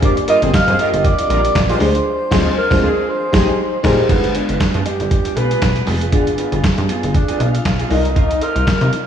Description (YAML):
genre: early-eighties boogie funk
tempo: 118 BPM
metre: 4/4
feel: swing 56% on 16ths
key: unclear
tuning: A4 = 440 Hz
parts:
  - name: breathy alto saxophone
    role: melody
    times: 0.0-8.9 s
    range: B3 to F5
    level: -19 LUFS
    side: right 1 dB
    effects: slapback echo, tape echo
  - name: FM electric piano with soft pad layer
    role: accompaniment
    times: 0.0-9.1 s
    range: Ab3 to D5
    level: -22 LUFS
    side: left 2 dB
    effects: chorus, tremolo, slapback echo
  - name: electric guitar through a small old amp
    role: riff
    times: 0.0-9.0 s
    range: Ab3 to C5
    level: -25 LUFS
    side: right 4 dB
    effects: lush chorus, slapback echo
  - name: plucky analog bass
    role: bass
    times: 0.0-8.9 s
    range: F1 to C3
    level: -19 LUFS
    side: equal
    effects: none
  - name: lo-fi sampler-style drum kit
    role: drums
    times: 0.0-9.1 s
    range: crash cymbal, handclaps, hi-hat, kick drum, snare drum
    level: -18 LUFS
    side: equal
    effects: none
  - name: analog synth brass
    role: second line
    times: 0.3-4.0 s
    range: F3 to C5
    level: -24 LUFS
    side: left 2 dB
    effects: chorus, slapback echo
room: moderate concert hall reverb, RT60 2.3 s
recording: big arena sound, studio reverb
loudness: -13 LUFS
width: side -8 dB against mid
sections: 0.0-4.1 A section; 4.1-9.1 B section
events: band accent 2.1-4.1; alto saxophone solo 4.1-9.1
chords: 0.0 Gm7; 1.8 Dm7b5; 3.1 Bb13sus4; 4.1 G7b9; 7.9 Cm11